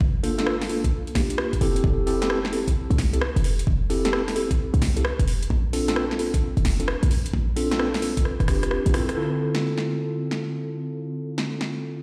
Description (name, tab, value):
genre	UK garage, two-step garage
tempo	131 BPM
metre	4/4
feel	swing 65% on 16ths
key	D minor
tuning	A4 = 440 Hz
part	short 808-style bass	bass	0.0-9.1 s	F1 to C2	-27 LUFS	equal	none
part	electronic kick drum	drums	0.0-8.6 s	none	-27 LUFS	equal	overdrive, studio reverb
part	mellow tine electric piano	stabs	0.2-12.0 s	D3 to A4	-28 LUFS	equal	low-pass filter, delay
part	garage drum kit	drums	0.2-11.7 s	hi-hat, rim click, snare drum	-32 LUFS	equal	overdrive, studio reverb
room	moderate lush hall reverb, RT60 1.8 s, digital ambience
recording	played on a big sound system in a bare room, large studio reverb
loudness	-24 LUFS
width	mono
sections	0.0-9.2 A section; 9.2-12.0 B section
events	drum fill 8.3-9.2; kick drops out 8.7-9.2; band accent 9.1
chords	0.0 Gm9; 1.6 Fmaj9; 5.5 Bbmaj7; 9.2 Dm7